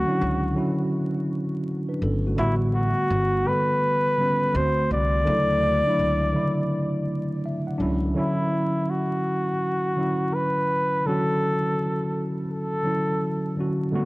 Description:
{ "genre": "lo-fi hip hop", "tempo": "83 BPM", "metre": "4/4", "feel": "swing 65% on 16ths", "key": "D major", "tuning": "A4 = 440 Hz", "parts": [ { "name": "breathy flugelhorn", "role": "melody", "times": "0.0-13.5 s", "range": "E4 to D5", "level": "-25 LUFS", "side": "equal", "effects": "low-pass filter" }, { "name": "tine electric piano", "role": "accompaniment", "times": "0.0-14.1 s", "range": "C#3 to F#5", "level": "-25 LUFS", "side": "equal", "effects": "medium stereo tremolo, cassette tape, low-pass filter" }, { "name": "upright bass", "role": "bass", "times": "0.2-8.1 s", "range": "G1 to D2", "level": "-26 LUFS", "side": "equal", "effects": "transformer saturation" } ], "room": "light reverb", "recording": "dry, gritty hardware recording, vinyl crackle", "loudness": "-22 LUFS", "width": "side -20 dB against mid", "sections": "0.0-8.2 A section; 8.2-14.1 B section", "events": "none", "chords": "0.0 Dmaj9; 2.4 A13sus4; 4.5 D7; 5.3 Dmaj9" }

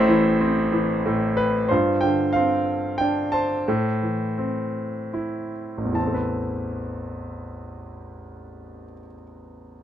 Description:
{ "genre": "classical, lyrical solo piano", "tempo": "69-95 BPM", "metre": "3/4", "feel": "rubato", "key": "A minor", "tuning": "A4 = 440 Hz", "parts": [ { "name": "bright concert grand piano", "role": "solo", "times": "0.0-9.8 s", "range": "A1 to A5", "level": "-22 LUFS", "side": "equal", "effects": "none" } ], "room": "moderate studio reverb, RT60 0.6 s", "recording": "none", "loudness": "-21 LUFS", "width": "side -10 dB against mid", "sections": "0.0-1.7 A section; 1.7-6.0 B section; 6.0-9.8 C section", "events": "slowing down 1.7-6.0", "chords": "0.0 Am; 1.7 G7sus4; 3.7 Am; 6.0 Amadd9" }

